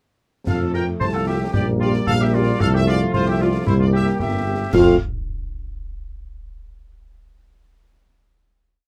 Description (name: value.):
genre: military-style march for wind band.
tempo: 113 BPM.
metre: 2/4.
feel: straight.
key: F major.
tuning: A4 = 442 Hz.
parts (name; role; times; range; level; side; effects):
clear trumpet section; melody; 0.5-5.0 s; C5 to A5; -30 LUFS; equal; none.
warm woodwind section; second line; 0.5-5.0 s; E4 to F5; -29 LUFS; equal; none.
warm trombone section; sustained chords; 0.5-5.0 s; F3 to C4; -26 LUFS; equal; none.
dark tuba; bass; 0.5-5.0 s; G1 to F2; -22 LUFS; equal; none.
concert snare drum, clash cymbals and concert bass drum; drums; 0.5-5.0 s; none; -29 LUFS; equal; none.
mellow French horn section; accompaniment; 0.7-5.0 s; A3 to G4; -24 LUFS; equal; none.
room: moderate booth ambience, RT60 0.2 s.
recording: none.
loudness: -19 LUFS.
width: mono.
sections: 0.5-4.7 A section; 4.7-5.8 final chord.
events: none.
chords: 0.5 F; 1.5 Gm/Bb; 2.6 F/C; 3.7 C7; 4.7 F.